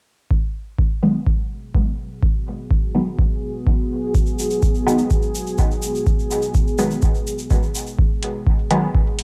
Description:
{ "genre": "dub techno", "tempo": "125 BPM", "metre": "4/4", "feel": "straight", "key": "G# minor", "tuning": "A4 = 440 Hz", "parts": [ { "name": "deep dark ambient pad", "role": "sustained chords", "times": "2.0-9.2 s", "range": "B3 to G#4", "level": "-28 LUFS", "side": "equal", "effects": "chorus, built-in reverb, sidechain pumping" }, { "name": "electronic kick drum", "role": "drums", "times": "0.3-9.0 s", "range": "none", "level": "-21 LUFS", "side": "equal", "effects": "none" }, { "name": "filtered dub chord stab", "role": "stabs", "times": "1.0-8.9 s", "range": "D#3 to B3", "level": "-24 LUFS", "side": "equal", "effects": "phaser, sidechain pumping, dub echo" }, { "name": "tube shaker", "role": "percussion", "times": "4.1-8.0 s", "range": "none", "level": "-34 LUFS", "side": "equal", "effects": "none" }, { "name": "electronic hi-hat", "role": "drums", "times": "8.2-9.2 s", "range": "none", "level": "-28 LUFS", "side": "equal", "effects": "none" } ], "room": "little or no reverb", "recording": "dry, gritty hardware recording, cassette tape", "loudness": "-20 LUFS", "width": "mono", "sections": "0.3-8.0 A section; 8.0-9.2 B section", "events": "filter sweep on synth stab 0.3-8.0", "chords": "0.3 G#m7" }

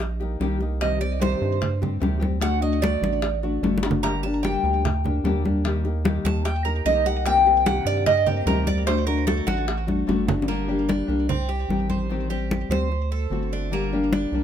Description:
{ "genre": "latin, Cuban son and guajira", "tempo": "149 BPM", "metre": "4/4", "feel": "straight", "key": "G harmonic minor", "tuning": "A4 = 440 Hz", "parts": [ { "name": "nylon-string guitar", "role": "accompaniment", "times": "0.0-14.4 s", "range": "C3 to G4", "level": "-27 LUFS", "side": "left 4 dB", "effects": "none" }, { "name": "rubbery square bass", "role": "bass", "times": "0.0-14.4 s", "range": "G1 to G2", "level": "-26 LUFS", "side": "right 1 dB", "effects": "none" }, { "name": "bongos", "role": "percussion", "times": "0.0-10.5 s", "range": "none", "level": "-32 LUFS", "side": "left 3 dB", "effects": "none" }, { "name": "congas", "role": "percussion", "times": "0.0-14.4 s", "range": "none", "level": "-27 LUFS", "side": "equal", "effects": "none" }, { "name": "Cuban tres", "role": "arpeggios", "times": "0.8-14.4 s", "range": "Bb3 to Bb5", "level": "-25 LUFS", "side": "right 1 dB", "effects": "tape echo" } ], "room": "light reverb", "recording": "none", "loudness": "-20 LUFS", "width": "side -9 dB against mid", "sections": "0.0-10.5 A section; 10.5-14.4 B section", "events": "Cuban tres solo 0.0-10.5; drum fill 3.6-4.0, 9.9-10.5", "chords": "0.0 Eb; 0.8 Cm; 2.4 D; 4.0 Gm; 5.7 Eb; 7.3 Cm7; 8.9 D; 10.5 Gm; 11.3 Cm; 12.1 Am7b5; 12.9 D7; 13.7 Gm" }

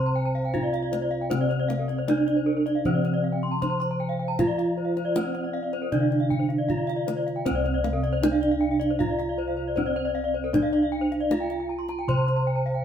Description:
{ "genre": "Balinese gamelan", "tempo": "78 BPM", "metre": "4/4", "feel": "straight", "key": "C slendro", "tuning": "A4 = 440 Hz", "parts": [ { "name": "gamelan-type bronze metallophone", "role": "melody", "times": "0.0-12.8 s", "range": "C4 to C5", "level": "-27 LUFS", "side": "right 4 dB", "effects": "none" }, { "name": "gamelan-type bronze metallophone", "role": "accompaniment", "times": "0.0-7.5 s", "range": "C3 to C4", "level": "-32 LUFS", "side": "left 3 dB", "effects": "none" }, { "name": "gamelan-type bronze metallophone", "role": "arpeggios", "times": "0.0-12.8 s", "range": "Bb4-45c to C6", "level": "-32 LUFS", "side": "left 6 dB", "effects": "none" }, { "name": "gamelan-type bossed gongs", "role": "bass", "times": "0.0-12.8 s", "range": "C2 to F4-35c", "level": "-28 LUFS", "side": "equal", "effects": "none" }, { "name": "gamelan-type bronze metallophone", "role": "arpeggios", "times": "0.1-12.8 s", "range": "Bb4-45c to C6", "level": "-32 LUFS", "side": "left 1 dB", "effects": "none" }, { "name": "kendang", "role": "percussion", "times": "0.5-12.4 s", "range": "none", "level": "-33 LUFS", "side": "left 3 dB", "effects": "none" } ], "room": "wet studio reverb, RT60 0.8 s", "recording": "band playing live in one room", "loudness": "-23 LUFS", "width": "side -9 dB against mid", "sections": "0.0-7.5 A section; 7.5-12.8 A section", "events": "none", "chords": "none" }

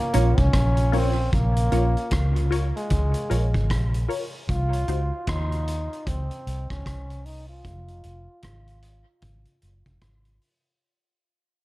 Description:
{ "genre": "dub reggae", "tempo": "76 BPM", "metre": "4/4", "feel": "swing 61% on 16ths", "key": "Bb minor", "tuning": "A4 = 440 Hz", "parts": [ { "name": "bright trombone", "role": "melody", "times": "0.0-10.0 s", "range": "Ab3 to F4", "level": "-30 LUFS", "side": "equal", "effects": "low-pass filter, dub echo" }, { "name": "mellow electric guitar", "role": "accompaniment", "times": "0.1-1.9 s", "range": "Db4 to Db5", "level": "-32 LUFS", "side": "right 2 dB", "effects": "low-pass filter, dub echo" }, { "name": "filtered dub chord stab", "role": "stabs", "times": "0.1-5.0 s", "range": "Eb4 to Db5", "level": "-32 LUFS", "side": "left 2 dB", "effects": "phaser, low-pass filter, dub echo" }, { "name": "vintage muted fingered electric bass", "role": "bass", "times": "0.1-10.4 s", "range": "F1 to Eb2", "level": "-23 LUFS", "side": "equal", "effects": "none" }, { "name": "vintage drum kit", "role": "drums", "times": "0.1-10.6 s", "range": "hi-hat, kick drum, rim click", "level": "-28 LUFS", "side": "equal", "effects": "none" } ], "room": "light reverb, small room ambience", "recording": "dark, warm production", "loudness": "-21 LUFS", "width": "side -18 dB against mid", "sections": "0.0-10.8 A section", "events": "fade-out 0.0-10.8; filter sweep 0.0-10.8; break 1.3-10.8", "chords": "0.0 Bbm; 4.5 Cm; 7.6 Fm" }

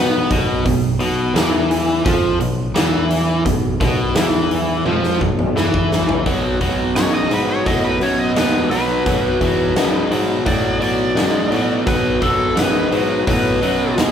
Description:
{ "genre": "blues rock power trio and southern rock", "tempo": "86 BPM", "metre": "4/4", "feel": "straight", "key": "unclear", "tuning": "A4 = 440 Hz", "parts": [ { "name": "cranked stack guitar", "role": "riff", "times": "0.0-14.1 s", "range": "B2 to B3", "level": "-18 LUFS", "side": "equal", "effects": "overdrive" }, { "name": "picked electric bass", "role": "bass", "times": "0.0-14.1 s", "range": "B1 to B2", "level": "-23 LUFS", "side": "equal", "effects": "none" }, { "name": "huge arena drum kit", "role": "drums", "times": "0.3-14.1 s", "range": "hi-hat, kick drum, snare drum, toms", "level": "-20 LUFS", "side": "equal", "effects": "none" }, { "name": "overdriven slide guitar", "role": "melody", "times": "7.0-14.0 s", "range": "A4 to D#5", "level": "-21 LUFS", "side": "left 1 dB", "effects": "none" } ], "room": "moderate large studio reverb, RT60 1.4 s", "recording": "band playing live in one room", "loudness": "-15 LUFS", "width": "side -8 dB against mid", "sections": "0.0-6.3 A section; 6.3-14.1 B section", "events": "drum fill 4.9-6.3; electric slide guitar solo 6.3-14.1", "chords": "0.0 Bsus4; 6.3 B5" }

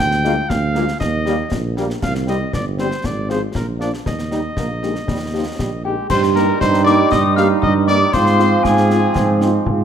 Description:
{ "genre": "military-style march for wind band", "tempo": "118 BPM", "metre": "2/4", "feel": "straight", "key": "Eb major", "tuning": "A4 = 438 Hz", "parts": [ { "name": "warm cornet", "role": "melody", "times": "0.0-9.7 s", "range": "G4 to G5", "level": "-23 LUFS", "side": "equal", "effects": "none" }, { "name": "mellow tuba", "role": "bass", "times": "0.0-9.8 s", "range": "G1 to Ab2", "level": "-19 LUFS", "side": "right 3 dB", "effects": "none" }, { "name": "concert snare drum, concert bass drum and clash cymbals", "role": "drums", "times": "0.1-9.8 s", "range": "none", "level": "-25 LUFS", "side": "left 2 dB", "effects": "none" }, { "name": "mellow French horn section", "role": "accompaniment", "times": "0.2-9.5 s", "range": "F3 to Ab4", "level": "-25 LUFS", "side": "left 4 dB", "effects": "none" }, { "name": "bright trombone section", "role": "sustained chords", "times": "0.2-9.8 s", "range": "F3 to Eb4", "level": "-24 LUFS", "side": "right 2 dB", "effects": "none" }, { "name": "mellow wooden piccolo", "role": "second line", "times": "5.8-9.6 s", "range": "G5 to F6", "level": "-23 LUFS", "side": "left 4 dB", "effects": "none" }, { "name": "glockenspiel with rubber mallets", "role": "second line", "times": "5.9-9.6 s", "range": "G5 to F6", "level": "-21 LUFS", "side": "left 4 dB", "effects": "none" }, { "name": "warm euphonium", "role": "second line", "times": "6.1-9.8 s", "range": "C4 to G4", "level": "-20 LUFS", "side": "right 5 dB", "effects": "none" } ], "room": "moderate large studio reverb, RT60 1.2 s", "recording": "none", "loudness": "-15 LUFS", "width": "side -8 dB against mid", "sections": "0.0-6.1 A section; 6.1-9.8 B section", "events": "none", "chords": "0.0 Bb7/D; 1.0 Eb; 2.0 C5; 3.0 Fm/Ab; 3.6 Bb; 4.1 Eb; 6.1 Eb/G; 8.1 Fm/Ab" }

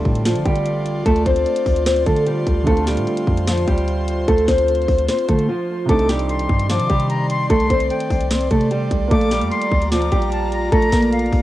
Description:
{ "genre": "hip hop, trap", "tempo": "149 BPM", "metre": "4/4", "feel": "half-time", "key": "D phrygian", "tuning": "A4 = 443 Hz", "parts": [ { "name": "nylon-string guitar", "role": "melody", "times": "0.0-11.4 s", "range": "F3 to C5", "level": "-19 LUFS", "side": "equal", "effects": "low-pass filter, cassette tape, tape echo" }, { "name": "dark grand piano", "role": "accompaniment", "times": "0.0-11.4 s", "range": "C3 to F5", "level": "-30 LUFS", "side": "right 3 dB", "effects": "low-pass filter, cassette tape" }, { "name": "airy breathy pad", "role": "sustained chords", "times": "0.0-11.4 s", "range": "Eb3 to C6", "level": "-26 LUFS", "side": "right 1 dB", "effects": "chorus, cassette tape" }, { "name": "warm 808-style bass", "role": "bass", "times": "0.0-11.4 s", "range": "Bb1 to D3", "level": "-22 LUFS", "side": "equal", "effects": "none" }, { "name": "impact", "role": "sound effects", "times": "0.0-1.1 s", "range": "none", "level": "-44 LUFS", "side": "equal", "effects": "none" }, { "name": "trap drum kit", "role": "drums", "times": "0.1-11.4 s", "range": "hi-hat, kick drum, snare drum", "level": "-21 LUFS", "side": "equal", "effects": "vintage 12-bit sampler grit, cassette tape" }, { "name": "silver concert flute", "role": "second line", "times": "5.9-11.4 s", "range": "F5 to D6", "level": "-24 LUFS", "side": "left 3 dB", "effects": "cassette tape, tape echo" } ], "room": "digital ambience", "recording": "home recording on cassette", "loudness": "-16 LUFS", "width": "side -14 dB against mid", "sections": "0.0-11.4 A section", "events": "impact 0.0-1.1; break 5.5-5.9", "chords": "0.0 Dm7; 5.9 Cmadd9; 9.1 Bb" }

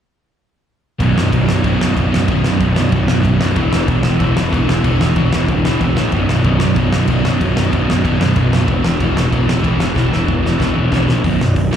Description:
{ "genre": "punk rock", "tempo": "188 BPM", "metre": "4/4", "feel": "straight", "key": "unclear", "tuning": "A4 = 439 Hz", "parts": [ { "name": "crunchy overdriven guitar", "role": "riff", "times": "1.0-11.8 s", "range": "B1 to E3", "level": "-16 LUFS", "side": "equal", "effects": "none" }, { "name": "fuzz picked electric bass", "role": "bass", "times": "1.0-11.8 s", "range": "B0 to A#1", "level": "-18 LUFS", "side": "equal", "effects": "overdrive" }, { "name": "loose indie drum kit", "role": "drums", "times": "1.0-11.8 s", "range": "crash cymbal, hi-hat, kick drum, snare drum", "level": "-18 LUFS", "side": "equal", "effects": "none" } ], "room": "little or no reverb", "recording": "live gig heard through the venue's PA, club reverb", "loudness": "-13 LUFS", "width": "side -9 dB against mid", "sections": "1.0-11.2 A section", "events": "drum fill 10.0-11.2", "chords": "1.0 B5; 3.6 E5; 6.1 B5; 8.7 E5; 11.2 B5" }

